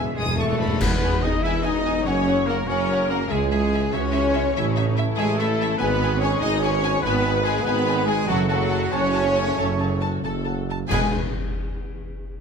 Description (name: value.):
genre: cinematic, heroic adventure film score.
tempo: 95 BPM (dotted quarters).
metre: 12/8.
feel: uneven beats.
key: E major.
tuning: A4 = 441 Hz.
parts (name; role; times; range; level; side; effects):
clear studio violin section; melody; 0.0-11.2 s; E5 to D#6; -32 LUFS; left 2 dB; none.
bright oboe; second line; 0.0-11.1 s; F#4 to E5; -35 LUFS; right 1 dB; none.
warm symphonic violin section; second line; 0.0-11.1 s; F#4 to G#5; -33 LUFS; left 3 dB; none.
rich studio viola section; accompaniment; 0.0-11.2 s; D#4 to C#5; -31 LUFS; equal; none.
dark trombone section; sustained chords; 0.0-11.1 s; B2 to B3; -34 LUFS; right 3 dB; none.
mellow French horn section; sustained chords; 0.0-11.1 s; F#3 to E4; -28 LUFS; left 6 dB; none.
concert harp; arpeggios; 0.0-11.2 s; E2 to B5; -34 LUFS; left 11 dB; none.
warm trumpet section; stabs; 0.0-11.1 s; F#4 to E5; -30 LUFS; right 2 dB; none.
clear symphonic double bass section; bass; 0.0-11.2 s; E1 to F#2; -27 LUFS; right 4 dB; none.
mellow tuba; bass; 0.0-11.1 s; E1 to C#2; -28 LUFS; right 5 dB; none.
rich symphonic cello section; bass; 0.0-11.2 s; E2 to E4; -28 LUFS; right 1 dB; none.
timpani; percussion; 0.0-1.4, 10.9-11.1 s; E2; -31 LUFS; left 2 dB; none.
silver concert flute; second line; 0.2-11.2 s; F#5 to E6; -34 LUFS; left 4 dB; none.
clash cymbals and concert bass drum; percussion; 0.8-1.6, 10.9-11.8 s; none; -29 LUFS; left 1 dB; none.
room: moderate concert hall reverb, RT60 2.1 s.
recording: none.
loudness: -19 LUFS.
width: side -6 dB against mid.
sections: 0.8-10.9 A section; 10.9-12.4 B section.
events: timpani fill 0.0-0.8; band accent 0.8-1.2, 10.9-11.4; slowing down 6.6-10.9.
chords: 0.0 E; 2.1 F#; 3.3 C#m; 4.6 A; 5.8 G#m; 8.3 F#m; 10.9 E.